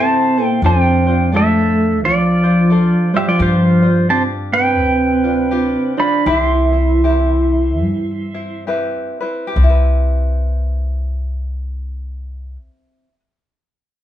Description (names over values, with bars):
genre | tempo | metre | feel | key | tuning
Hawaiian | 65-87 BPM | 4/4 | swing 62% on 8ths | C major | A4 = 440 Hz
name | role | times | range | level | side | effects
pedal steel guitar | melody | 0.0-8.6 s | F4 to C6 | -18 LUFS | right 1 dB | none
soft octave-layered synth lead | second line | 0.0-8.6 s | F3 to E4 | -16 LUFS | right 1 dB | chorus
tenor ukulele | accompaniment | 0.0-13.2 s | C4 to C5 | -23 LUFS | left 2 dB | none
upright bass | bass | 0.0-12.6 s | C2 to G2 | -18 LUFS | left 1 dB | none
room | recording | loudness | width
wet studio reverb, RT60 0.7 s | band playing live in one room, nothing above 10.8 kHz | -13 LUFS | side -11 dB against mid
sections
0.0-9.6 A section; 9.6-13.2 B section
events
slowing down 3.4-9.6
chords
0.0 C6; 0.6 F6; 3.4 G7sus4; 6.3 Cmaj7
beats
| 0.64 1.33 2.02 2.71 | 3.40 4.10 4.80 5.52 | 6.26 7.02 7.82 8.66 | 9.55 10.47 11.39 12.30